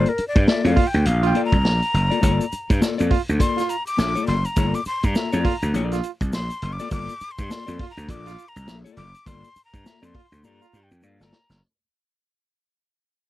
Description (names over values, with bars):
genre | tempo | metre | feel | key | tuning
funk | 102 BPM | 4/4 | swing 60% on 16ths | G dorian | A4 = 442 Hz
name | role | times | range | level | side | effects
breathy jazz flute | melody | 0.0-11.6 s | Bb4 to D6 | -27 LUFS | left 1 dB | none
mellow electric guitar | accompaniment | 0.0-11.4 s | Bb3 to E5 | -25 LUFS | left 6 dB | none
gritty slap bass | bass | 0.0-11.6 s | F#1 to G2 | -22 LUFS | equal | overdrive
vintage drum kit | drums | 0.1-11.6 s | hi-hat, kick drum, snare drum | -22 LUFS | equal | none
clear trombone | second line | 0.8-10.8 s | F4 | -25 LUFS | right 10 dB | none
tube shaker | percussion | 2.2-11.6 s | none | -44 LUFS | left 2 dB | none
room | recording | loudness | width
little or no reverb | dry, close 1970s-style studio recording | -19 LUFS | side -15 dB against mid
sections
0.0-11.6 A section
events
fade-out 0.0-11.6; flute solo 0.0-11.6; drum fill 10.4-11.6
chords
0.0 Gm9